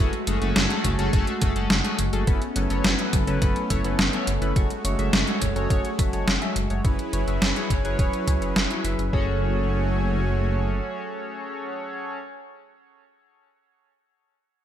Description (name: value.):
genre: synthwave.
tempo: 105 BPM.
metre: 4/4.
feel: straight.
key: F# minor.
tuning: A4 = 440 Hz.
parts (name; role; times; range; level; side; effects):
soft supersaw; sustained chords; 0.0-12.2 s; F#3 to G#5; -29 LUFS; right 1 dB; sidechain pumping.
chorused polysynth; stabs; 0.0-12.2 s; F#3 to E5; -29 LUFS; left 2 dB; cassette tape, ping-pong delay.
dark detuned saw bass; bass; 0.0-10.8 s; E1 to C#2; -26 LUFS; equal; none.
detuned 8-bit digital drum machine; drums; 0.1-9.1 s; hi-hat, snare drum; -25 LUFS; equal; overdrive, small room ambience, gated reverb.
electronic kick drum; drums; 0.8-9.3 s; none; -24 LUFS; equal; overdrive, small room ambience.
room: light reverb, digital ambience.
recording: bright 1980s-style digital production.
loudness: -21 LUFS.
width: side -10 dB against mid.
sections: 0.0-9.1 A section; 9.1-11.4 B section.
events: filter sweep on analog polysynth 0.0-9.1.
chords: 0.0 F#madd9; 2.3 Aadd9/F#; 4.6 F#madd9; 6.8 C#m7/F#; 9.1 F#madd9.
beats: 0.56 1.13 1.70 | 2.27 2.85 3.42 3.99 | 4.56 5.13 5.70 6.27 | 6.85 7.42 7.99 8.56 | 9.13 9.70 10.27 10.85.